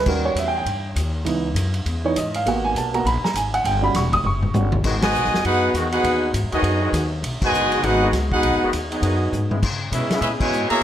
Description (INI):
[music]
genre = jazz, big band swing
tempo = 201 BPM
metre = 4/4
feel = swing 61% on 8ths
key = G# minor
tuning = A4 = 440 Hz
[part]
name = warm upright piano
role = accompaniment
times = 0.0-4.8 s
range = E3 to D#6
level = -21 LUFS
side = right 3 dB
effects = none
[part]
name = upright bass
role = bass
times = 0.0-10.7 s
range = E1 to C#3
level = -24 LUFS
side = left 1 dB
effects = none
[part]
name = vintage drum kit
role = drums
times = 0.1-10.8 s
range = crash cymbal, hi-hat, kick drum, ride cymbal, snare drum, toms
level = -26 LUFS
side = left 1 dB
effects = none
[part]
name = dark trombone section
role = sustained chords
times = 4.8-10.5 s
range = C#3 to F#4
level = -29 LUFS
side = left 2 dB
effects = none
[part]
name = clear trumpet section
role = melody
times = 5.0-10.8 s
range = B3 to A#5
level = -21 LUFS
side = equal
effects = none
[part]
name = dark trombone section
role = second line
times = 5.0-10.8 s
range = B2 to F#4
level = -24 LUFS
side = equal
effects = none
[sound]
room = moderate recital hall reverb, RT60 1.3 s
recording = none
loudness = -18 LUFS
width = side -10 dB against mid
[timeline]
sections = 0.0-4.8 A section; 4.8-10.8 B section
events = upright piano solo 0.0-4.8; drum fill 4.2-4.8, 9.3; band accent 5.0, 7.4, 10.4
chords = 0.1 D#7#9; 1.3 C#m7; 2.5 G#m7; 3.7 Em69; 4.8 G#m7; 9.6 C#m7